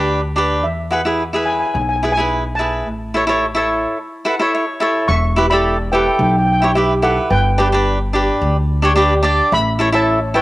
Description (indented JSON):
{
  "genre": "calypso",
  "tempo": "108 BPM",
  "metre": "4/4",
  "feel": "straight",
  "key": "unclear",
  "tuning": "A4 = 440 Hz",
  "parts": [
    { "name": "steel pan", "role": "melody", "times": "0.0-10.4 s", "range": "G4 to C#6", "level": "-18 LUFS", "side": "equal", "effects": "cassette tape" },
    { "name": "cavaquinho", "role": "accompaniment", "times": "0.0-10.4 s", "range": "D4 to F#5", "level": "-16 LUFS", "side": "equal", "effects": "cassette tape" },
    { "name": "upright bass", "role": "bass", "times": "0.0-10.4 s", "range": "E1 to E2", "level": "-19 LUFS", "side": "equal", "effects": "none" }
  ],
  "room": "moderate spring reverb, RT60 1.9 s, small room ambience",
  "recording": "home recording on cassette",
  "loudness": "-14 LUFS",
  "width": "side -17 dB against mid",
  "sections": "0.0-5.1 A section; 5.1-10.4 B section",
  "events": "cavaquinho fill 4.0-5.1",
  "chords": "0.0 G/D; 0.6 E; 2.9 A; 5.1 Em; 7.3 G; 9.5 A",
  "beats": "0.09 | 0.64 1.20 1.75 2.31 | 2.87 3.42 3.98 4.53 | 5.09 5.64 6.20 6.75 | 7.30 7.86 8.41 8.97 | 9.52 10.07"
}